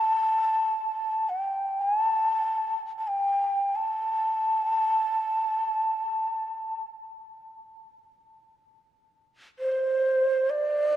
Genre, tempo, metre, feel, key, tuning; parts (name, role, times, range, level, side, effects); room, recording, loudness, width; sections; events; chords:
japanese traditional, Japanese chamber music; free time; A4 = 441 Hz
breathy mellow shakuhachi; solo; 0.0-11.0 s; C5 to A5; -24 LUFS; equal
moderate cathedral reverb, RT60 4.8 s; lossy compression artefacts; -24 LUFS; side -12 dB against mid
0.0-11.0 A section
slowing down 5.2-11.0